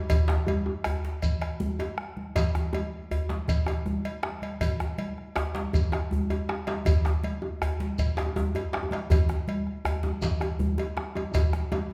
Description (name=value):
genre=west african traditional, West African drum ensemble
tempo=107 BPM (dotted quarters)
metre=12/8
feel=straight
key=none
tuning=none
part: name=bombo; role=percussion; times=0.1-11.7 s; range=none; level=-32 LUFS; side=equal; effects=none
part: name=congas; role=percussion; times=0.1-11.9 s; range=none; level=-36 LUFS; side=equal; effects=none
part: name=cowbell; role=percussion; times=0.1-11.9 s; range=none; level=-40 LUFS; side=equal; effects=none
part: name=djembe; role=percussion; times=0.1-11.8 s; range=none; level=-34 LUFS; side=equal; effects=none
part: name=djembe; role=percussion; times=0.1-11.9 s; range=none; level=-34 LUFS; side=equal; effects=none
part: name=shekere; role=percussion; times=0.1-11.5 s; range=none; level=-38 LUFS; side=equal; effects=none
room=wet recital hall reverb, RT60 1.3 s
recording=recorded in a church or concert hall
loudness=-28 LUFS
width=mono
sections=0.0-11.9 A section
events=drum fill 11.3-11.9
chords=none